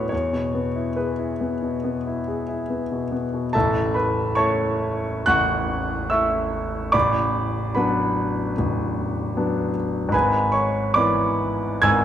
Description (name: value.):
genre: classical, romantic character piece for solo piano.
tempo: 65-78 BPM.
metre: 4/4.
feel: rubato.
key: A major.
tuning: A4 = 440 Hz.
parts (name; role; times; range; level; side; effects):
clear grand piano; solo; 0.0-12.0 s; A0 to G#6; -20 LUFS; equal; none.
room: wet recital hall reverb, RT60 1.7 s.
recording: none.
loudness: -20 LUFS.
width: side -10 dB against mid.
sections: 0.0-3.5 A section; 3.5-12.0 B section.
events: none.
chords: 0.1 E; 3.5 A; 6.9 Bm7/A; 10.1 E7/G#.